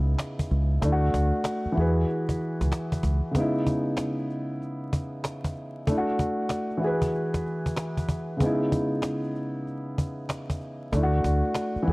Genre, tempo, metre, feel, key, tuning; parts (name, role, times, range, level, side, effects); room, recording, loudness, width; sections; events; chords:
hip hop, boom-bap hip-hop; 95 BPM; 4/4; swing 62% on 16ths; C# minor; A4 = 440 Hz
dark concert grand piano; accompaniment; 0.0-11.9 s; C#3 to B4; -27 LUFS; equal
deep dub fingered electric bass; bass; 0.0-3.2, 10.9-11.9 s; C#2 to E2; -23 LUFS; equal; transformer saturation
cajon; drums; 0.2-11.9 s; -28 LUFS; equal
studio ambience; worn, warbling old tape, cassette tape, vinyl crackle, warbly pitch drift; -24 LUFS; side -23 dB against mid
0.0-11.9 A section
break 3.3-8.4
0.0 C#m7; 0.8 D; 1.8 Eadd9; 3.3 C#m7; 5.9 D; 6.8 Eadd9; 8.4 C#m7; 10.9 D